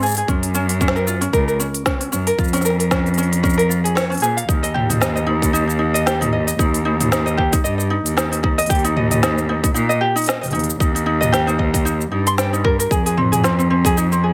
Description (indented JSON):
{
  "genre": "folktronica",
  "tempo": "114 BPM",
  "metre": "4/4",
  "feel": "swing 56% on 16ths",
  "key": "Eb mixolydian",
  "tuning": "A4 = 440 Hz",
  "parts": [
    { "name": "ukulele", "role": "arpeggios", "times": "0.0-14.3 s", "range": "C4 to C6", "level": "-23 LUFS", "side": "equal", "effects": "tape echo, plate reverb" },
    { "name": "warm cello", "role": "bass", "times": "0.0-14.3 s", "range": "Db2 to Bb2", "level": "-22 LUFS", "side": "equal", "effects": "none" },
    { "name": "organic electronic drum kit", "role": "drums", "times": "0.0-14.2 s", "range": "hi-hat, shaker, snare drum, toms", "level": "-24 LUFS", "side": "equal", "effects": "none" },
    { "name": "electronic kick drum", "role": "drums", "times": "0.3-13.9 s", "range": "none", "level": "-22 LUFS", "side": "equal", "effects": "none" }
  ],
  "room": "light reverb",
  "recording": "none",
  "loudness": "-18 LUFS",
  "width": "mono",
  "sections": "0.0-4.5 A section; 4.5-14.3 B section",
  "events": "break 4.0-4.5; band accent 4.0",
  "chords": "0.3 Gb; 2.4 Bbm/F; 4.5 Eb; 12.9 Fm",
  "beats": "| 0.28 0.81 1.33 1.86 | 2.39 2.91 3.44 3.97 | 4.49 5.02 5.54 6.07 | 6.60 7.12 7.65 8.18 | 8.70 9.23 9.76 10.28 | 10.81 11.33 11.86 12.39 | 12.91 13.44 13.97"
}